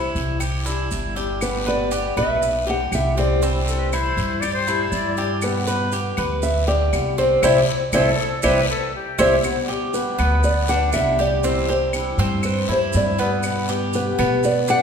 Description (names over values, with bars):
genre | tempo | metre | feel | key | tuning
latin, Cuban son and guajira | 120 BPM | 4/4 | straight | G major | A4 = 441 Hz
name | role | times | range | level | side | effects
nylon-string guitar | melody | 0.0-14.8 s | B4 to F#5 | -22 LUFS | equal | none
picked swing-style acoustic guitar | accompaniment | 0.0-14.8 s | B2 to G4 | -27 LUFS | left 3 dB | none
Cuban tres | arpeggios | 0.0-14.8 s | B3 to C5 | -25 LUFS | right 2 dB | none
upright bass | bass | 0.0-14.8 s | G1 to B2 | -24 LUFS | equal | none
guiro | percussion | 0.2-14.8 s | none | -34 LUFS | left 4 dB | none
maracas | percussion | 0.2-14.8 s | none | -36 LUFS | right 7 dB | none
claves | percussion | 0.4-14.4 s | none | -33 LUFS | left 3 dB | none
bright silver concert flute | second line | 3.7-9.4 s | G4 to D5 | -26 LUFS | left 3 dB | none
room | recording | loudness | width
wet recital hall reverb, RT60 1.5 s | recorded in a church or concert hall | -18 LUFS | side -7 dB against mid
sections
0.0-9.4 A section; 9.4-14.8 B section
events
band accent 7.4-9.4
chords
0.0 Cadd9; 1.4 G; 3.4 Cadd9; 5.4 G; 7.4 Cadd9; 9.4 G; 11.4 Cadd9; 13.4 G